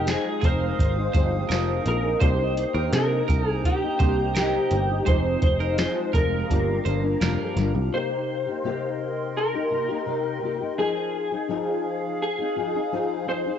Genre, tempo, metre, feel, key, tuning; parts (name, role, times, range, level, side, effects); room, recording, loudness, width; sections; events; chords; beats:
indie pop, bedroom pop; 84 BPM; 4/4; straight; C minor; A4 = 440 Hz
electric guitar through a small old amp; melody; 0.0-13.6 s; G4 to C5; -27 LUFS; equal; ensemble chorus, cassette tape, analog delay
clean electric guitar; second line; 0.0-7.7 s; Bb4 to C5; -35 LUFS; right 8 dB; wide subtle chorus, analog delay
nylon-string guitar; accompaniment; 0.0-13.6 s; G2 to Ab4; -29 LUFS; left 9 dB; ensemble chorus, warbly pitch drift, plate reverb
warm analog keys; accompaniment; 0.0-7.9 s; Ab3 to G5; -33 LUFS; right 11 dB; chorus, phaser, cassette tape, plate reverb
warbly tape-like pad; sustained chords; 0.0-13.6 s; Ab3 to Eb6; -33 LUFS; right 2 dB; chorus, built-in reverb, phaser, plate reverb
picked electric bass; bass; 0.0-7.9 s; F1 to C3; -26 LUFS; right 1 dB; tube saturation
soft vintage rhythm box; drums; 0.1-7.7 s; hi-hat, kick drum, snare drum; -24 LUFS; right 1 dB; cassette tape
moderate studio reverb, RT60 0.6 s; home recording on cassette, nothing above 7.9 kHz; -22 LUFS; side -9 dB against mid
0.0-7.9 A section; 7.9-13.6 A section
0.0 Fm7; 2.2 Cm7; 5.1 Fm7; 6.5 Gm7; 7.9 Cm7; 10.8 Fm7
0.08 0.79 1.50 | 2.22 2.93 3.64 4.36 | 5.07 5.79 6.50 7.21 | 7.93 8.64 9.36 10.07 | 10.78 11.50 12.21 12.93